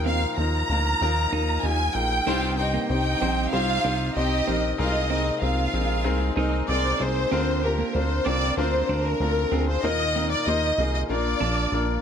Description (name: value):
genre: piano-driven pop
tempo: 95 BPM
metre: 4/4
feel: straight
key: Eb major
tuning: A4 = 440 Hz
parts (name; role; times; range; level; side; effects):
- clear baby grand piano; accompaniment; 0.0-12.0 s; G2 to C5; -28 LUFS; left 5 dB; none
- tonewheel organ; sustained chords; 0.0-12.0 s; C3 to Bb4; -37 LUFS; right 1 dB; none
- chorused synth bass; bass; 0.0-12.0 s; Bb1 to Eb2; -26 LUFS; right 1 dB; none
- warm studio violin section; melody; 0.1-12.0 s; Bb4 to Bb5; -26 LUFS; equal; none
- clean electric guitar; riff; 0.1-11.9 s; Bb3 to Eb4; -32 LUFS; right 11 dB; none
- warm studio violin section; second line; 2.3-7.1 s; C4 to G5; -32 LUFS; right 1 dB; none
room: light reverb, studio reverb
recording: none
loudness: -21 LUFS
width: side -8 dB against mid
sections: 0.0-12.0 A section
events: none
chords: 0.0 Ebsus2; 2.3 Cm; 4.8 Abadd9; 7.3 Bbadd9; 9.8 Ebsus2; 11.1 Bb